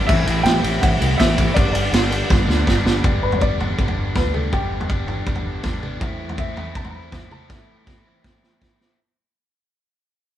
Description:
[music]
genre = indie rock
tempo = 162 BPM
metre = 4/4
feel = straight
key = G major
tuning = A4 = 440 Hz
[part]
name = warm upright piano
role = melody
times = 0.0-8.0 s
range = G4 to B5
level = -25 LUFS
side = left 2 dB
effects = none
[part]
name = overdriven electric guitar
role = riff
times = 0.0-9.0 s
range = G2 to E4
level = -25 LUFS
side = left 1 dB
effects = spring reverb
[part]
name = fingered electric bass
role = bass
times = 0.0-6.0 s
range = G1 to D2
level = -23 LUFS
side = equal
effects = none
[part]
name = vintage drum kit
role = drums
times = 0.1-8.9 s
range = crash cymbal, kick drum, ride cymbal, snare drum, toms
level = -20 LUFS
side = right 1 dB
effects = none
[sound]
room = light reverb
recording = band playing live in one room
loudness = -17 LUFS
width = side -12 dB against mid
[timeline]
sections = 0.0-3.0 A section; 3.0-9.0 B section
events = drum fill 2.3-3.0, 7.5-9.0; fade-out 3.0-9.0; upright piano solo 3.0-9.0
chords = 0.1 Am7; 1.6 G; 6.0 Am

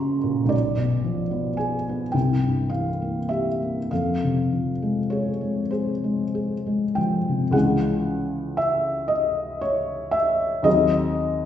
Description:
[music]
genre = classical, romantic nocturne for solo piano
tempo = 32-42 BPM (dotted quarters)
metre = 12/8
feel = rubato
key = F minor, C# minor from 7.5 s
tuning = A4 = 440 Hz
[part]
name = felt-muted upright piano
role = solo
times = 0.0-11.5 s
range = Bb1 to Db6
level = -21 LUFS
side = left 1 dB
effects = none
[sound]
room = wet recital hall reverb, RT60 1.2 s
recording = recorded in a church or concert hall, nothing above 7.7 kHz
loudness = -21 LUFS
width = side -10 dB against mid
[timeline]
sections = 0.0-7.5 A section; 7.5-11.5 B section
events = none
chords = 0.0 Gb/Bb; 0.5 Bdim7; 2.1 C7; 3.9 Fm; 7.5 C#m; 10.7 G#7/D#

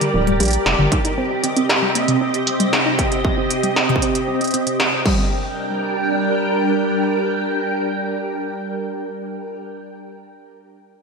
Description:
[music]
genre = IDM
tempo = 116 BPM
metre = 4/4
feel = straight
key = G minor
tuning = A4 = 439 Hz
[part]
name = soft string machine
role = sustained chords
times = 0.0-9.5 s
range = C3 to G5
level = -20 LUFS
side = right 1 dB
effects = phaser, ensemble chorus
[part]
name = warbly dusty pluck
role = arpeggios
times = 0.0-5.3 s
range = G2 to G4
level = -23 LUFS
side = equal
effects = chorus, digital delay, slapback echo
[part]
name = industrial drum kit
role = drums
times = 0.0-5.2 s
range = crash cymbal, hi-hat, snare drum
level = -21 LUFS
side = right 1 dB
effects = tape echo, slapback echo
[part]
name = rubbery square bass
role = bass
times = 0.1-0.9 s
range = D1 to Bb1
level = -20 LUFS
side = equal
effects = none
[part]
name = electronic kick drum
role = drums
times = 0.9-5.2 s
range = none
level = -21 LUFS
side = equal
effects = distortion
[sound]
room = wet lush hall reverb, RT60 2.0 s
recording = big arena sound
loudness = -17 LUFS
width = side -4 dB against mid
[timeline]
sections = 0.0-5.1 A section; 5.1-9.2 B section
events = none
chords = 0.0 Gm; 0.9 Cm; 5.1 Gm

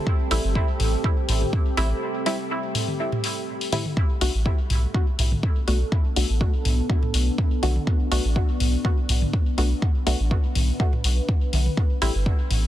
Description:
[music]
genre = dub techno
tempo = 123 BPM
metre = 4/4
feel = swing 54% on 16ths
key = B phrygian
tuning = A4 = 440 Hz
[part]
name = deep dark ambient pad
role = sustained chords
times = 0.0-12.7 s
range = B3 to B4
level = -31 LUFS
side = equal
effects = chorus, built-in reverb, sidechain pumping
[part]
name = electronic kick drum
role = drums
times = 0.1-12.4 s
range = none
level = -22 LUFS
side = equal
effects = none
[part]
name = filtered dub chord stab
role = stabs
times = 0.3-12.1 s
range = G3 to F#4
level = -30 LUFS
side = equal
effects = chorus, phaser, sidechain pumping, dub echo
[part]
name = soft dub sub bass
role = bass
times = 0.3-12.7 s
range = G1 to B1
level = -22 LUFS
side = equal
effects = sidechain pumping
[part]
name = electronic hi-hat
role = drums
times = 0.3-12.6 s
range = none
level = -29 LUFS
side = left 5 dB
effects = none
[part]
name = electronic toms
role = percussion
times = 0.8-12.6 s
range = none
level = -31 LUFS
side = right 1 dB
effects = sidechain pumping on toms
[sound]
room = little or no reverb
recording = dense, heavily limited modern master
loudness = -20 LUFS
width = side -13 dB against mid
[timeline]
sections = 0.0-12.7 A section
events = break 2.0-4.0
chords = 0.0 Am7; 4.0 Bm7; 11.8 Am7

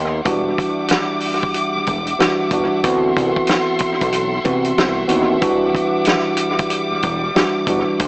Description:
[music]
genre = hip hop, boom-bap hip-hop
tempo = 93 BPM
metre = 4/4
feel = swing 61% on 16ths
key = E minor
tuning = A4 = 444 Hz
[part]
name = warm studio string section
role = sustained chords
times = 0.0-8.1 s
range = G3 to D6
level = -22 LUFS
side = equal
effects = high-pass filter, low-pass filter
[part]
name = fat analog bass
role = bass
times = 0.0-8.1 s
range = E1 to D#2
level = -23 LUFS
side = equal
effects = none
[part]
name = tine electric piano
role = accompaniment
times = 0.2-8.0 s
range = E3 to F#4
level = -19 LUFS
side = right 1 dB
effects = cassette tape, high-pass filter, low-pass filter, tape echo
[part]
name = warm soul drum kit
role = drums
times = 0.3-8.1 s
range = hi-hat, kick drum, snare drum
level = -20 LUFS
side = equal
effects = tape echo
[sound]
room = moderate echo chamber reverb, RT60 2.3 s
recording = echo-heavy mix, small speaker sound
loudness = -15 LUFS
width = side -25 dB against mid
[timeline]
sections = 0.0-8.1 A section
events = break 0.0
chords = 0.3 Em9; 2.8 D13; 5.4 Em9

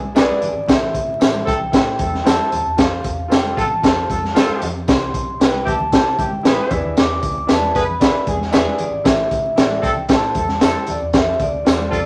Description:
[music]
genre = uptempo 1960s-style soul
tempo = 115 BPM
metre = 4/4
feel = straight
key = unclear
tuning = A4 = 439 Hz
[part]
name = vibraphone with medium hard mallets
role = melody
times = 0.0-12.1 s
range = D5 to D6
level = -24 LUFS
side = equal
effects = none
[part]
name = vintage muted fingered electric bass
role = bass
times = 0.0-12.1 s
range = Eb1 to C3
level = -31 LUFS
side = equal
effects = none
[part]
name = congas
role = percussion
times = 0.0-11.9 s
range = none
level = -35 LUFS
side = equal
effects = none
[part]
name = mellow horn section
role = second line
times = 0.1-12.0 s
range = C4 to B4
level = -27 LUFS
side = equal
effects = none
[part]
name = warm grand piano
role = accompaniment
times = 0.1-12.0 s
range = A2 to E5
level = -28 LUFS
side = equal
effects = none
[part]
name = crunchy breakbeat drum kit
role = drums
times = 0.2-12.1 s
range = hi-hat, kick drum, snare drum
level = -19 LUFS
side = equal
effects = none
[part]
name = tambourine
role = percussion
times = 0.2-11.8 s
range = none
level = -41 LUFS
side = equal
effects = none
[sound]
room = moderate studio reverb, RT60 0.8 s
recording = vinyl crackle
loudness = -17 LUFS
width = mono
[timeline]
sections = 0.0-12.1 A section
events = none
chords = 0.0 E7; 0.7 Am; 2.8 F; 4.9 C; 6.7 E7; 9.1 Am; 11.1 F

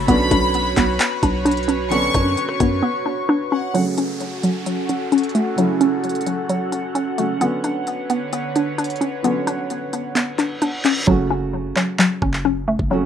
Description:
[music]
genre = hip hop, trap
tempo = 131 BPM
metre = 4/4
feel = half-time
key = F# minor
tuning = A4 = 439 Hz
[part]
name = felt-muted upright piano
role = accompaniment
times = 0.0-13.1 s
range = C#3 to F#4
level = -26 LUFS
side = right 4 dB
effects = low-pass filter
[part]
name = airy breathy pad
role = sustained chords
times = 0.0-11.0 s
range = D3 to C#6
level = -25 LUFS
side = right 1 dB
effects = chorus, low-pass filter
[part]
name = hollow square pluck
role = arpeggios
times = 0.0-13.1 s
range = F#3 to D4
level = -20 LUFS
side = left 1 dB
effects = chorus, low-pass filter, ping-pong delay
[part]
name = growling 808-style bass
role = bass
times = 0.0-2.8, 11.1-13.1 s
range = F#1 to F#2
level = -24 LUFS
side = equal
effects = none
[part]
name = warm studio violin section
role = second line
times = 0.1-3.7 s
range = F#5 to C#6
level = -25 LUFS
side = left 1 dB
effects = ping-pong delay
[part]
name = trap drum kit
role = drums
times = 0.1-12.9 s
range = handclaps, hi-hat, kick drum, rim click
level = -23 LUFS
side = equal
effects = vintage 12-bit sampler grit
[part]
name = downlifter and reverse cymbal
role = sound effects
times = 3.7-7.4, 10.4-11.1 s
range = none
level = -31 LUFS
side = right 1 dB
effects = none
[sound]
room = little or no reverb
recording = rough home demo mix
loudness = -18 LUFS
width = side -8 dB against mid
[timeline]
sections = 0.0-3.7 A section; 3.7-11.1 B section; 11.1-13.1 C section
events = break 2.8-3.7; filter sweep 3.7-11.1; reverse cymbal 10.4-11.1; hi-hats muted 11.1-13.1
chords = 0.1 Bmadd9; 3.7 F#m; 7.4 Bmadd9; 11.1 F#m

